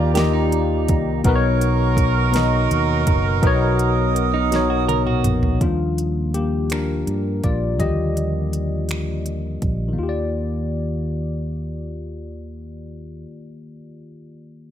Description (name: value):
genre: slow six-eight R&B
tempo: 55 BPM (dotted quarters)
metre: 6/8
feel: straight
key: Eb major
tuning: A4 = 440 Hz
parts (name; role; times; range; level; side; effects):
- clean electric guitar; second line; 0.0-5.6 s; Eb4 to A#4; -26 LUFS; right 12 dB; tremolo
- tine electric piano; accompaniment; 0.0-14.7 s; B2 to Eb5; -23 LUFS; left 4 dB; analog chorus
- flute section; sustained chords; 0.0-5.6 s; G4 to D#6; -27 LUFS; right 6 dB; none
- warm horn section; stabs; 0.0-5.2 s; Bb3 to D5; -26 LUFS; right 9 dB; none
- fingered electric bass; bass; 0.0-13.2 s; F#1 to G2; -23 LUFS; right 1 dB; none
- smooth R&B drum kit; drums; 0.2-9.8 s; finger snaps, hi-hat, kick drum, snare drum, toms; -22 LUFS; right 1 dB; none
room: digital ambience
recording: none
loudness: -18 LUFS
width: side -10 dB against mid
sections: 0.0-5.6 A section; 5.6-10.0 B section; 10.0-14.3 C section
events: drum fill 4.5-5.6; tine electric piano solo 5.6-10.0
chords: 0.0 Ebmaj9; 1.2 Bmaj9; 5.6 Ebmaj9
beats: 0.16 | 1.25 2.34 | 3.43 4.52 | 5.61 6.70 | 7.79 8.89 | 9.98 11.07 | 12.16 13.25